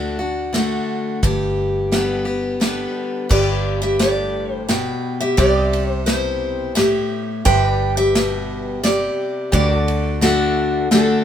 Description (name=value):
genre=honky-tonk and classic country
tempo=87 BPM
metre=3/4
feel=straight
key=G major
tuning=A4 = 440 Hz
part: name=picked steel-string acoustic guitar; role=melody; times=0.0-11.2 s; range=D4 to G5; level=-21 LUFS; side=equal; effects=none
part: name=picked steel-string acoustic guitar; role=accompaniment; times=0.0-11.2 s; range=G2 to G4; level=-22 LUFS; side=left 3 dB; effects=none
part: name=vintage muted fingered electric bass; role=bass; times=0.0-11.2 s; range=G1 to D2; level=-24 LUFS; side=equal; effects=none
part: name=natural country drum kit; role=drums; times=0.5-11.1 s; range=crash cymbal, kick drum, ride cymbal, snare drum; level=-22 LUFS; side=right 1 dB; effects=none
part: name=pedal steel guitar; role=sustained chords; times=3.3-11.2 s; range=F#4 to E5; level=-29 LUFS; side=equal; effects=none
room=light reverb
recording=minimal, uncompressed stereo recording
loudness=-17 LUFS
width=side -9 dB against mid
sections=0.0-3.3 A section; 3.3-11.2 B section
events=none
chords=0.0 D; 1.2 G; 5.4 C; 7.5 G; 9.5 D